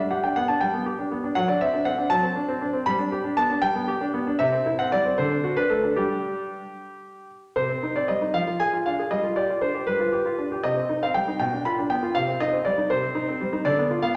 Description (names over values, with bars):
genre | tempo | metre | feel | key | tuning
classical-period piano sonatina | 79 BPM (dotted quarters) | 6/8 | straight | G major, C minor from 7.6 s | A4 = 435 Hz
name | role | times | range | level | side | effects
clear grand piano | solo | 0.0-14.2 s | B2 to B5 | -24 LUFS | equal | none
room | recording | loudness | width
wet recital hall reverb, RT60 1.5 s | none | -24 LUFS | mono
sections
0.0-7.6 A section; 7.6-14.2 B section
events
none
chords
0.0 G; 1.4 D7/F#; 2.9 G; 4.4 C; 5.2 D7; 6.0 G5; 7.6 Cm; 8.3 Ddim/F; 9.1 G7; 10.6 Cm; 11.4 G7/B; 12.1 Cm; 13.6 Dm6